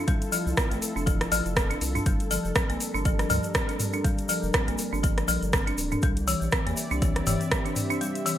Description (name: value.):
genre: afro house.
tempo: 121 BPM.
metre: 4/4.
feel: swing 57% on 16ths.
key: G dorian.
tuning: A4 = 439 Hz.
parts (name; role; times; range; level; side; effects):
dark analog pad; sustained chords; 0.0-8.4 s; G3 to E5; -34 LUFS; left 1 dB; chorus, sidechain pumping.
folk marimba with hard mallets; arpeggios; 0.0-8.4 s; E3 to D4; -29 LUFS; left 1 dB; sidechain pumping, digital delay.
afro-pop drum kit; drums; 0.1-8.4 s; hi-hat, rim click, toms; -29 LUFS; right 1 dB; gated reverb.
electronic kick drum; drums; 0.1-7.6 s; none; -26 LUFS; equal; none.
egg shaker; percussion; 0.1-8.4 s; none; -36 LUFS; left 4 dB; none.
round analog bass; bass; 0.5-7.4 s; D1 to E2; -31 LUFS; equal; sidechain pumping.
room: light reverb, digital ambience.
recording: bright 1980s-style digital production.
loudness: -23 LUFS.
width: side -11 dB against mid.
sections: 0.0-8.4 A section.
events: kick drops out 8.0-8.4.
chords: 0.0 Fmaj7; 2.1 Gm7; 6.0 Cadd9.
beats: | 0.08 0.57 1.07 1.57 | 2.06 2.56 3.05 3.55 | 4.04 4.54 5.04 5.53 | 6.03 6.52 7.02 7.52 | 8.01.